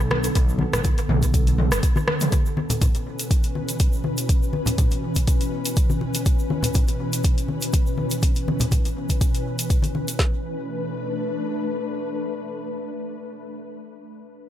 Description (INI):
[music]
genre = afro house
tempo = 122 BPM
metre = 4/4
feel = swing 54% on 16ths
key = B minor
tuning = A4 = 438 Hz
[part]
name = ethereal airy pad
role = sustained chords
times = 0.0-13.5 s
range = B2 to B4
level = -28 LUFS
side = left 1 dB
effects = ensemble chorus, built-in reverb, sidechain pumping
[part]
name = smooth gliding synth bass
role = bass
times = 0.0-1.8 s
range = F#1 to B1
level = -22 LUFS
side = equal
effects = sidechain pumping
[part]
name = egg shaker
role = percussion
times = 0.0-10.2 s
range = none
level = -35 LUFS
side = right 2 dB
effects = none
[part]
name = deep house drum kit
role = drums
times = 0.1-10.2 s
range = hi-hat, rim click, toms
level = -27 LUFS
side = equal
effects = overdrive, dub echo
[part]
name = congas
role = percussion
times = 0.1-10.1 s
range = none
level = -28 LUFS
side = left 2 dB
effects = dub echo
[part]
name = afro-pop drum kit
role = drums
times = 0.4-10.3 s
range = kick drum, snare drum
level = -20 LUFS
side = equal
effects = none
[sound]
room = light reverb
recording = echo-heavy mix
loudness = -20 LUFS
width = side -11 dB against mid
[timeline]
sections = 0.0-10.2 A section; 10.2-14.1 B section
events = none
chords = 0.0 Bm7; 2.3 C#m7/B; 10.2 Bm7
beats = | 0.35 0.85 1.34 1.83 | 2.32 2.81 3.31 3.80 | 4.29 4.78 5.27 5.76 | 6.26 6.75 7.24 7.73 | 8.22 8.72 9.21 9.70 | 10.19 10.68 11.18 11.67 | 12.16 12.65 13.14